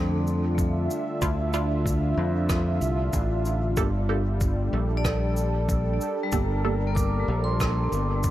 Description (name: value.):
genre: ambient dub.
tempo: 94 BPM.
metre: 4/4.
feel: swing 54% on 16ths.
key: G dorian.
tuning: A4 = 440 Hz.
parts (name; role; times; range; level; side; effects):
warm analog pad; sustained chords; 0.0-8.3 s; D3 to E5; -29 LUFS; right 1 dB; chorus.
vibraphone with hard mallets; arpeggios; 0.0-8.3 s; G3 to D6; -34 LUFS; left 3 dB; dub echo.
fingered electric bass; bass; 0.0-8.3 s; G1 to F2; -25 LUFS; equal; none.
cabasa and rim click; drums; 0.3-8.3 s; none; -36 LUFS; right 1 dB; dub echo.
electronic kick drum; drums; 0.6-8.3 s; none; -28 LUFS; equal; none.
filtered dub chord stab; stabs; 1.2-6.9 s; Bb3 to A4; -35 LUFS; right 2 dB; phaser, dub echo.
room: light reverb, studio ambience.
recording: none.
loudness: -23 LUFS.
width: side -14 dB against mid.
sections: 0.0-8.3 A section.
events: none.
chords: 0.0 Dmadd9; 3.8 Gmadd9.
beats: 0.58 | 1.22 1.86 2.50 3.13 | 3.77 4.41 5.05 5.69 | 6.33 6.96 7.60 8.24.